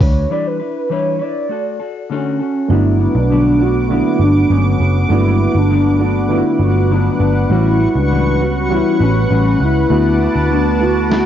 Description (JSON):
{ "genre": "indie pop, bedroom pop", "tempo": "100 BPM", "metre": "4/4", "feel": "straight", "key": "unclear", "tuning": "A4 = 438 Hz", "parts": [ { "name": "warbly nostalgic lead", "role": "melody", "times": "0.0-11.3 s", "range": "C#4 to D5", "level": "-18 LUFS", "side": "equal", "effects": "lush chorus, cassette tape, analog delay" }, { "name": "mellow electric guitar", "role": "accompaniment", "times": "0.0-11.3 s", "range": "G2 to B4", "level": "-20 LUFS", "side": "left 9 dB", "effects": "lush chorus, warbly pitch drift, cassette tape" }, { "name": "vintage muted picked electric bass", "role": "bass", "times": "0.0-11.2 s", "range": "F#1 to D2", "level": "-15 LUFS", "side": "equal", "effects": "none" }, { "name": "boom bap sampler-style drum kit", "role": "drums", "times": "0.0-0.1, 11.1-11.2 s", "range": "hi-hat, kick drum, snare drum", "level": "-15 LUFS", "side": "equal", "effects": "cassette tape" }, { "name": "reed electric piano", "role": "accompaniment", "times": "2.7-11.3 s", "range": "G3 to F#4", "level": "-20 LUFS", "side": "right 10 dB", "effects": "cassette tape" }, { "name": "lush unison pad", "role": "sustained chords", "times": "2.7-11.3 s", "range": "B4 to D6", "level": "-22 LUFS", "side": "right 1 dB", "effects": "chorus, cassette tape" } ], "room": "moderate small room reverb, RT60 0.6 s", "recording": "home recording on cassette, nothing above 7.5 kHz", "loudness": "-12 LUFS", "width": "side -10 dB against mid", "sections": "0.0-2.7 A section; 2.7-11.3 B section", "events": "break 0.3-2.7; drum fill 11.1", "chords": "0.3 Em7; 1.5 Dmaj7; 2.7 Gmaj7; 7.5 A13; 9.9 D6" }